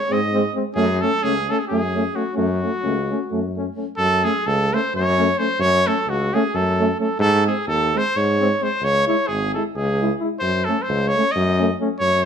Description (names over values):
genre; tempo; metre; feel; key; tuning
balkan folk, Balkan brass band; 261 BPM (eighths); 7/8; straight; F# dorian sharp4; A4 = 440 Hz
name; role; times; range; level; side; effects
clear trumpet; melody; 0.0-12.3 s; F#4 to D#5; -21 LUFS; right 1 dB; none
mellow euphonium; accompaniment; 0.1-11.9 s; G#3 to A3; -25 LUFS; right 5 dB; none
warm trombone; accompaniment; 0.1-11.9 s; B#3 to E4; -26 LUFS; left 9 dB; none
warm tuba; bass; 0.1-12.3 s; G#1 to G#2; -23 LUFS; left 1 dB; none
room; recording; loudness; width
moderate studio reverb, RT60 0.8 s; band playing live in one room; -18 LUFS; side -7 dB against mid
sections
0.0-4.0 A section; 4.0-12.3 B section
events
none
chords
0.0 G#; 0.8 F#m; 7.2 G#; 8.8 C#m; 10.4 F#m